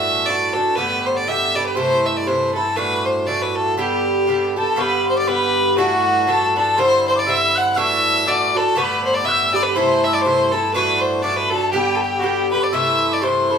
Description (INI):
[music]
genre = celtic folk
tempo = 121 BPM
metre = 2/4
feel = swing 58% on 8ths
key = G major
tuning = A4 = 440 Hz
[part]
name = bright fiddle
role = melody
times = 0.0-13.6 s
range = F#4 to F#5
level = -18 LUFS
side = equal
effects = none
[part]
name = Irish bouzouki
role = accompaniment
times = 0.0-13.6 s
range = G2 to G4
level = -21 LUFS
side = right 2 dB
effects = none
[part]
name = rich cello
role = drone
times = 0.0-13.6 s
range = G2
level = -34 LUFS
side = left 1 dB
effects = none
[part]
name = bright wooden whistle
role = second line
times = 4.6-13.6 s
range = F#5 to F#6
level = -23 LUFS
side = left 4 dB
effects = none
[sound]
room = wet studio reverb, RT60 0.5 s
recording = band playing live in one room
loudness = -16 LUFS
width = side -7 dB against mid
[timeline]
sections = 0.0-4.8 A section; 4.8-12.7 A section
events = none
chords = 0.0 Dadd9; 0.8 Gadd9; 1.8 Am; 2.8 Dadd9; 3.8 G; 5.8 Dadd9; 6.8 Cadd9; 7.8 Dadd9; 8.8 Gadd9; 9.7 Am; 10.7 Dadd9; 11.7 G; 12.7 Am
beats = 0.29 | 0.79 1.28 | 1.78 2.28 | 2.78 3.28 | 3.78 4.28 | 4.78 5.28 | 5.77 6.27 | 6.77 7.26 | 7.76 8.26 | 8.76 9.25 | 9.75 10.25 | 10.74 11.24 | 11.73 12.23 | 12.73 13.22